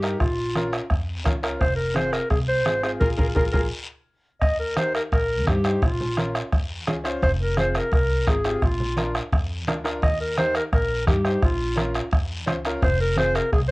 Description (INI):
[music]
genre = latin, cumbia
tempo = 171 BPM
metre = 4/4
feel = straight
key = unclear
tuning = A4 = 440 Hz
[part]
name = warm clarinet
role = melody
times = 0.0-13.7 s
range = F4 to Eb5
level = -25 LUFS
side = equal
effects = cassette tape
[part]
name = bright upright piano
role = accompaniment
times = 0.0-13.4 s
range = C4 to C5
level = -30 LUFS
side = left 1 dB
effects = cassette tape
[part]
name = upright bass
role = bass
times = 0.0-13.7 s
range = F1 to G2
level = -27 LUFS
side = equal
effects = none
[part]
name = bombo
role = percussion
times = 0.0-13.7 s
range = none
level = -24 LUFS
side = equal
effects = none
[part]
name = guiro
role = percussion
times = 0.0-13.7 s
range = none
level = -37 LUFS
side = left 2 dB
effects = none
[part]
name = congas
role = percussion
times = 0.2-13.7 s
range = none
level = -30 LUFS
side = right 1 dB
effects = none
[sound]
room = light reverb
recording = home recording on cassette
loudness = -20 LUFS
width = side -23 dB against mid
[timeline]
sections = 0.0-4.4 A section; 4.4-13.7 A section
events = band accent 3.0-4.4; drum fill 3.7-4.4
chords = 0.2 Bbm; 1.6 Fm; 3.0 Bb5; 3.7 N.C.; 4.4 Eb; 5.8 Bbm; 7.2 Fm; 8.6 Bb; 10.0 Eb; 11.4 Bbm; 12.8 Fm